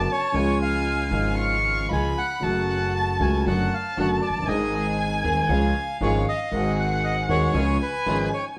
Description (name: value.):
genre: tango.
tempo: 117 BPM.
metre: 4/4.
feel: rubato.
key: unclear.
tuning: A4 = 440 Hz.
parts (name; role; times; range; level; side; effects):
bandoneon; melody; 0.0-8.4 s; B4 to A5; -30 LUFS; equal; none.
warm violin; second line; 0.0-8.5 s; E#5 to C#6; -31 LUFS; equal; none.
warm concert grand piano; accompaniment; 0.0-8.6 s; D#1 to G#4; -28 LUFS; equal; none.
warm studio string section; stabs; 0.0-8.3 s; G#3 to G#4; -36 LUFS; equal; none.
upright bass; bass; 0.0-8.3 s; E#1 to D#2; -29 LUFS; equal; none.
room: wet studio reverb, RT60 0.7 s.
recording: band playing live in one room.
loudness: -23 LUFS.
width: mono.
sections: 0.0-8.6 A section.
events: none.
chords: 0.3 C#; 2.4 F#m; 3.5 D/F#; 4.5 G#; 5.5 C#; 6.5 G#7; 7.5 C#.